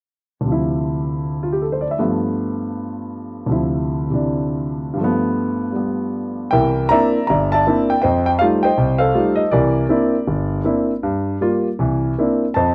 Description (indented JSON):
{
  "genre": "solo jazz",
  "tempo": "158 BPM",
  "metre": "4/4",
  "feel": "swing 64% on 8ths, rubato",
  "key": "C mixolydian",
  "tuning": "A4 = 440 Hz",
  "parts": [
    { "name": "clear concert grand piano", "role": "solo", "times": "0.4-12.7 s", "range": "G1 to Bb5", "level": "-19 LUFS", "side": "equal", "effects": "none" }
  ],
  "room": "light reverb",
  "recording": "dry, close 1970s-style studio recording",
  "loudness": "-19 LUFS",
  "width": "mono",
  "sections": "0.5-6.5 A section; 6.5-12.7 B section",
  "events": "none",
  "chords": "0.5 Dm9; 2.0 G9; 3.5 Dm9; 5.0 G9; 6.5 C9; 8.0 F9; 9.5 C9; 11.0 Gm7; 11.8 C9"
}